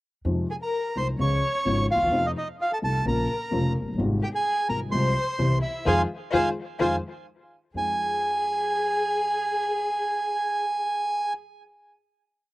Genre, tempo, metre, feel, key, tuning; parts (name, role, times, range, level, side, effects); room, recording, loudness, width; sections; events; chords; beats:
tango; 128 BPM; 4/4; rubato; F minor; A4 = 439 Hz
dark upright piano; accompaniment; 0.2-11.3 s; F1 to F4; -28 LUFS; left 2 dB
upright bass; bass; 0.2-7.9 s; F1 to F2; -28 LUFS; equal
bandoneon; melody; 0.5-11.3 s; Eb5 to Db6; -26 LUFS; right 1 dB
warm studio violin section; second line; 0.5-11.3 s; Eb4 to Db5; -30 LUFS; left 3 dB
little or no reverb; recorded outdoors, with no room sound; -23 LUFS; side -18 dB against mid
0.2-7.8 A section; 7.8-11.5 final chord
band accent 5.9-7.8
0.2 Fm7; 1.2 Db; 2.1 F7; 3.1 Bbm; 4.0 Fmadd9/Ab; 4.9 Fm/C; 5.4 C; 5.9 Fm7; 7.3 N.C.; 7.8 Fm7
| 0.25 0.72 1.19 1.66 | 2.13 2.60 3.06 3.53 | 4.00 4.46 4.93 5.40 | 5.87 6.33 6.80 7.28 | 7.75 8.22 8.69 9.15 | 9.62 10.09 10.56 11.03